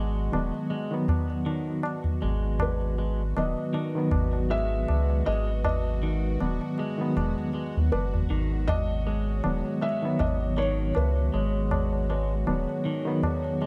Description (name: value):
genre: trip hop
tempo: 79 BPM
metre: 4/4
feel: swing 56% on 16ths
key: G# minor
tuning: A4 = 440 Hz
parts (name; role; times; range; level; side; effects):
- felt-muted upright piano; melody; 0.0-13.7 s; B4 to E5; -36 LUFS; equal; tape echo
- barky reed electric piano; accompaniment; 0.0-13.7 s; D#3 to B3; -34 LUFS; equal; overdrive, fast tremolo, harmonic tremolo, tape echo
- dark analog pad; sustained chords; 0.0-13.7 s; G#3 to C#5; -39 LUFS; equal; chorus, phaser
- clean electric guitar; arpeggios; 0.0-13.7 s; D#3 to G#3; -38 LUFS; equal; tape echo
- soft dub sub bass; bass; 0.0-12.7 s; D#1 to D#2; -30 LUFS; equal; none
- bowed-like drone; texture; 0.0-13.7 s; F#4; -46 LUFS; equal; built-in reverb
- tabla; percussion; 0.2-13.7 s; none; -34 LUFS; equal; none
room: light reverb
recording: dark, warm production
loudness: -27 LUFS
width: mono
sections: 0.0-13.7 A section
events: none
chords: 0.0 G#m7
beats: 0.70 1.46 | 2.22 2.98 3.74 4.50 | 5.26 6.02 6.78 7.54 | 8.30 9.06 9.82 10.58 | 11.34 12.10 12.86 13.62